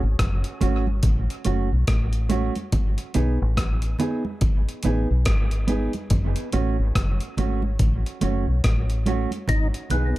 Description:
dub reggae; 71 BPM; 4/4; swing 61% on 16ths; F# dorian; A4 = 440 Hz
deep dub fingered electric bass; bass; 0.0-10.1 s; F#1 to B1; -22 LUFS; equal
breakbeat sampler-style drum kit; drums; 0.2-10.2 s; hi-hat, kick drum, rim click; -24 LUFS; equal; overdrive
mellow electric guitar; accompaniment; 0.6-10.1 s; A3 to G#4; -28 LUFS; right 4 dB; dub echo
congas; percussion; 0.6-10.1 s; -32 LUFS; right 3 dB; dub echo
percussive tonewheel organ; melody; 9.5-10.1 s; B3 to D#4; -31 LUFS; left 1 dB; chorus vibrato, slow rotary speaker, dub echo
digital ambience; -20 LUFS; side -17 dB against mid
0.0-10.2 A section
break 0.0-9.5
0.0 F#m; 2.7 G#m; 6.1 F#m; 9.5 G#m
0.19 1.03 1.88 | 2.73 3.57 4.42 5.26 | 6.11 6.95 7.79 8.64 | 9.48

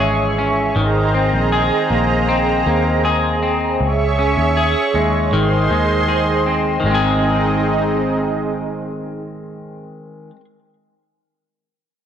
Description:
dream pop; 79 BPM; 4/4; straight; Ab major; A4 = 443 Hz
warm analog pad; sustained chords; 0.0-9.9 s; C4 to Db6; -19 LUFS; right 4 dB; chorus, tremolo
electric guitar at the edge of break-up; arpeggios; 0.0-10.4 s; Eb3 to Ab4; -19 LUFS; left 2 dB; wide subtle chorus, tape echo
vintage muted picked electric bass; bass; 0.0-9.9 s; Ab1 to Eb2; -21 LUFS; equal
light reverb, digital ambience; dry, gritty hardware recording; -15 LUFS; side -8 dB against mid
0.0-6.8 A section; 6.8-9.9 B section
0.0 Dbm; 0.8 Abadd9; 3.8 Dbm; 5.3 Ab
0.00 | 0.76 1.52 2.28 3.04 | 3.80 4.56 5.32 6.08 | 6.84 7.60 8.36 9.12

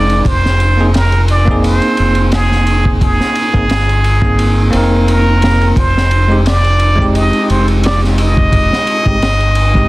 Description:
trip hop; 87 BPM; 4/4; swing 54% on 16ths; A4 = 442 Hz
trumpet with plunger mute; melody; 0.0-9.9 s; Ab4 to Eb5; -16 LUFS; right 1 dB; tape echo
bell-like tine electric piano; accompaniment; 0.0-9.9 s; Ab3 to Bb4; -17 LUFS; equal; harmonic tremolo, low-pass filter
deep dub fingered electric bass; bass; 0.0-9.9 s; F1 to G1; -13 LUFS; equal
crunchy breakbeat drum kit; drums; 0.1-9.9 s; kick drum, ride cymbal, snare drum; -16 LUFS; equal
small room ambience; dense, heavily limited modern master, vinyl crackle; -9 LUFS; side -19 dB against mid
0.0-9.9 A section
filter sweep on tine electric piano 0.0-9.9
0.3 Abadd9/F; 5.8 Fm7
| 0.26 0.95 1.64 2.33 | 3.02 3.71 4.39 5.08 | 5.77 6.46 7.15 7.84 | 8.53 9.22

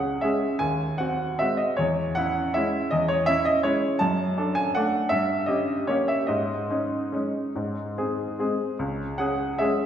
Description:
classical, piano waltz; 138-172 BPM; 3/4; rubato; C# minor; A4 = 440 Hz
bright baby grand piano; solo; 0.0-9.9 s; C#2 to A5; -23 LUFS; equal
wet recital hall reverb, RT60 1.8 s; heard from further back in the room; -23 LUFS; side -9 dB against mid
0.0-9.9 A section
0.0 C#m; 0.6 G#7/D#; 1.8 C#m/E; 4.0 D/F#; 5.1 Gdim7; 6.3 G#sus4; 7.6 G#; 8.8 C#m
0.22 | 0.60 0.99 1.39 | 1.77 2.15 2.53 | 2.91 3.28 3.65 | 4.02 4.38 4.75 | 5.12 5.48 5.89 | 6.29 6.70 7.13 | 7.56 7.97 8.39 | 8.80 9.20 9.60

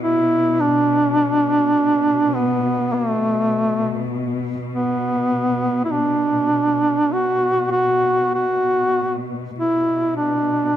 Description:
caucasian folk, Caucasian lament; 50 BPM; 4/4; rubato; B minor; A4 = 442 Hz
warm duduk; melody; 0.0-10.8 s; A3 to F#4; -17 LUFS; right 1 dB
dark studio cello section; drone; 0.0-10.8 s; B2; -26 LUFS; left 2 dB
light reverb; close, detailed microphones; -17 LUFS; side -11 dB against mid
0.0-10.8 A section
| 0.01 1.17 2.34 3.51 | 4.70 5.91 7.12 8.36 | 9.58

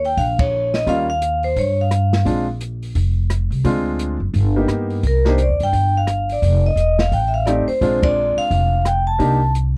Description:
jazz, small-group swing and bop; 173 BPM; 4/4; swing 62% on 8ths; Bb mixolydian; A4 = 440 Hz
vibraphone with medium mallets; melody; 0.0-2.4, 5.1-9.5 s; Bb4 to A5; -22 LUFS; equal
upright bass; bass; 0.0-9.8 s; E1 to G2; -21 LUFS; equal
open jazz drum kit; drums; 0.0-9.6 s; hi-hat, kick drum, ride cymbal, rim click, snare drum; -26 LUFS; equal
warm baby grand piano; accompaniment; 0.9-5.4, 7.5-9.4 s; G3 to G4; -24 LUFS; equal
little or no reverb; dry, close 1970s-style studio recording; -18 LUFS; mono
0.0-9.8 A section
band accent 0.3, 8.0
0.0 Eb9; 2.2 Bb9; 3.6 Dm7b5; 4.3 Gaug; 5.0 Cm; 6.4 F9; 7.8 Bb9; 9.2 Cm7
0.17 0.52 | 0.86 1.21 1.56 1.90 | 2.25 2.60 2.94 3.29 | 3.64 3.99 4.33 4.68 | 5.03 5.38 5.72 6.07 | 6.42 6.76 7.11 7.46 | 7.80 8.15 8.50 8.85 | 9.19 9.54

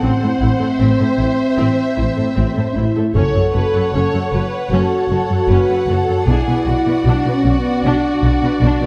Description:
cinematic, epic orchestral film score; 77 BPM; 4/4; straight; F# minor; A4 = 439 Hz
warm symphonic violin section; melody; 0.0-8.9 s; E5 to F#5; -30 LUFS; equal
warm symphonic violin section; second line; 0.0-8.9 s; F#4 to C#5; -28 LUFS; equal
rich symphonic viola section; accompaniment; 0.0-8.9 s; C4 to D5; -28 LUFS; equal
mellow French horn section; sustained chords; 0.0-8.9 s; B3 to A4; -20 LUFS; equal
rich symphonic double bass section; bass; 0.0-8.7 s; F#1 to B1; -22 LUFS; equal
warm symphonic cello section; bass; 0.0-8.9 s; F#2 to B2; -22 LUFS; equal
taiko ensemble; drums; 3.1-4.7 s; -24 LUFS; equal
moderate scoring stage reverb, RT60 1.8 s; -16 LUFS; mono
0.0-8.9 A section
0.0 Am; 3.2 F#m; 6.3 Bm
| 0.03 0.81 1.59 2.37 | 3.15 3.94 4.72 5.50 | 6.28 7.06 7.84 8.62

